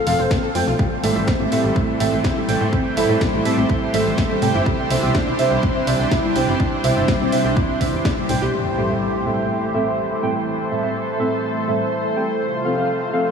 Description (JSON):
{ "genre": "progressive house", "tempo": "124 BPM", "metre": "4/4", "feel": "straight", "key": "A minor", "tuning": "A4 = 440 Hz", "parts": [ { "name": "deep mellow chord stab", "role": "stabs", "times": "0.0-13.3 s", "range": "A2 to G5", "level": "-21 LUFS", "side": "right 2 dB", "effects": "chorus, cassette tape, sidechain pumping, tape echo" }, { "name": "soft round pluck", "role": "arpeggios", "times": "0.1-8.5 s", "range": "G3 to C5", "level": "-24 LUFS", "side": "left 1 dB", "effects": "ensemble chorus, vintage 12-bit sampler grit, sidechain pumping, tape echo" }, { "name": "tight sequencer bass", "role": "bass", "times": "0.1-8.5 s", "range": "F1 to A2", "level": "-24 LUFS", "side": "left 1 dB", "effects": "sidechain pumping" }, { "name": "house drum kit", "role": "drums", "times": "0.1-8.4 s", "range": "hi-hat, snare drum", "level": "-29 LUFS", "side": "left 1 dB", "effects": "low-pass filter on hats, low-pass filter on snare, low-pass filter on room" }, { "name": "electronic kick drum", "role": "drums", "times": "0.3-8.2 s", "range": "none", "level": "-22 LUFS", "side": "equal", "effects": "none" }, { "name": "lush unison pad", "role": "sustained chords", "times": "0.8-13.3 s", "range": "C3 to C5", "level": "-24 LUFS", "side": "equal", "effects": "chorus, sidechain pumping" }, { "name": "impact", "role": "sound effects", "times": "8.5-10.5 s", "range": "none", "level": "-32 LUFS", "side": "left 2 dB", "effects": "none" } ], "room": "wet huge ambient reverb, RT60 5.2 s", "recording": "dreamy mix soaked in reverb, small room ambience", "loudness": "-17 LUFS", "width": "side -6 dB against mid", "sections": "0.0-8.5 A section; 8.5-13.3 B section", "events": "impact 8.5-10.5", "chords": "0.0 F; 0.8 Am7; 4.7 Cadd9; 8.5 Am7; 12.4 F" }